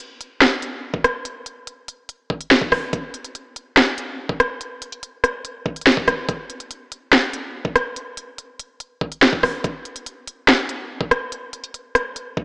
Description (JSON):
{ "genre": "hip hop", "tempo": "143 BPM", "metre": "4/4", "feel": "half-time", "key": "none", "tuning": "none", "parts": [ { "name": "drill drum kit", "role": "drums", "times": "0.0-12.4 s", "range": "finger snaps, hi-hat, kick drum, rim click, snare drum", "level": "-17 LUFS", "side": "equal", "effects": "none" } ], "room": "wet lush hall reverb, RT60 2.1 s", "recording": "AM radio sound", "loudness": "-17 LUFS", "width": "side -26 dB against mid", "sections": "0.0-12.4 A section", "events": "none", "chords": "none" }